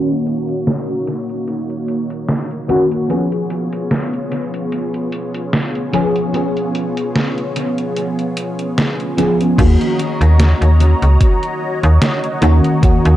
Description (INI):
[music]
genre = vaporwave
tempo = 74 BPM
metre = 4/4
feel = swing 55% on 16ths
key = Eb minor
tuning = A4 = 440 Hz
[part]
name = mellow FM electric piano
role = accompaniment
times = 0.0-13.2 s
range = Eb3 to Ab4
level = -18 LUFS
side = equal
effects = phaser, ensemble chorus, analog delay
[part]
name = lush unison pad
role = sustained chords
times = 0.0-13.2 s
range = Bb3 to Bb5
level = -23 LUFS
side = equal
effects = chorus, phaser
[part]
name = detuned 8-bit digital drum machine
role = drums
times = 0.1-13.2 s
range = crash cymbal, hi-hat, snare drum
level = -21 LUFS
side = equal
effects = overdrive, analog delay
[part]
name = slap-like FM bass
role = bass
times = 9.6-13.2 s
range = Db2 to Eb2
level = -10 LUFS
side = equal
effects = none
[part]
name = electronic kick drum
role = drums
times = 9.6-13.0 s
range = none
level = -12 LUFS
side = equal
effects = overdrive
[sound]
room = light reverb, digital ambience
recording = echo-heavy mix, low-pass filter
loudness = -14 LUFS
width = side -13 dB against mid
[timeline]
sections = 0.0-9.6 A section; 9.6-13.2 B section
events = filter sweep on analog synth pad 0.0-9.6; filter sweep 0.0-9.6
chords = 0.0 Ebm7; 3.1 Db7; 9.6 Ebm7